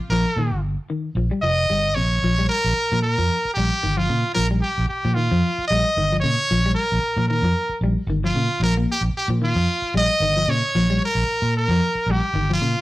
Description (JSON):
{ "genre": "afrobeat", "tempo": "113 BPM", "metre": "4/4", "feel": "swing 55% on 16ths", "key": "Bb dorian", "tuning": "A4 = 439 Hz", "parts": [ { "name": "clean electric guitar", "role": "arpeggios", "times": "0.0-12.8 s", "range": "C3 to Bb3", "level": "-26 LUFS", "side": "left 3 dB", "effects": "warbly pitch drift" }, { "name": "brilliant trumpet", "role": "melody", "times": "0.1-12.8 s", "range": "F4 to Eb5", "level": "-22 LUFS", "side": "equal", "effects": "none" }, { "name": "fingered electric bass", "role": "bass", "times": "0.1-12.7 s", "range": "F1 to Bb2", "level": "-22 LUFS", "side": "equal", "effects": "none" } ], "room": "moderate stone room reverb, RT60 1.1 s", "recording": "rough rehearsal-room recording", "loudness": "-18 LUFS", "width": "side -17 dB against mid", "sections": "0.0-2.2 A section; 2.2-12.8 B section", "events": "none", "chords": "0.0 Bb5" }